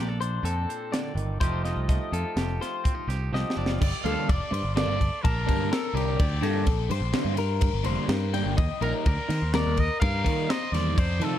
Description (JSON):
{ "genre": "math rock and midwest emo", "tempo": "125 BPM", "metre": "5/4", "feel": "straight", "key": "G minor", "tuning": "A4 = 440 Hz", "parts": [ { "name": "twangy electric guitar", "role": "accompaniment", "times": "0.0-6.2 s", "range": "Bb2 to C5", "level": "-36 LUFS", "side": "right 8 dB", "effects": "plate reverb" }, { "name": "twelve-string electric guitar", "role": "arpeggios", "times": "0.0-11.4 s", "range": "A4 to A5", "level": "-33 LUFS", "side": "left 8 dB", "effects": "spring reverb, plate reverb" }, { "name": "picked electric bass", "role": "bass", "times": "0.0-11.4 s", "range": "F1 to F3", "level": "-28 LUFS", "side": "equal", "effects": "none" }, { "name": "crisp fusion drum kit", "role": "drums", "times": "0.2-11.3 s", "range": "crash cymbal, hi-hat, kick drum, ride cymbal, snare drum", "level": "-28 LUFS", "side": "equal", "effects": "none" }, { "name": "crunchy overdriven guitar", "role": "riff", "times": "3.8-11.4 s", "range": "C3 to Eb4", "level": "-29 LUFS", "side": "right 2 dB", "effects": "phaser" }, { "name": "clear trumpet", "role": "melody", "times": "4.0-11.4 s", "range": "G4 to F5", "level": "-32 LUFS", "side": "right 2 dB", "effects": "plate reverb" } ], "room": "light reverb", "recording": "dark, warm production", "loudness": "-24 LUFS", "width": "side -11 dB against mid", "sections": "0.0-3.8 A section; 3.8-11.4 B section", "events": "drum fill 3.3-3.8", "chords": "0.0 Bbmaj9; 1.4 F9; 3.8 Gmadd9; 8.6 Ebmaj7" }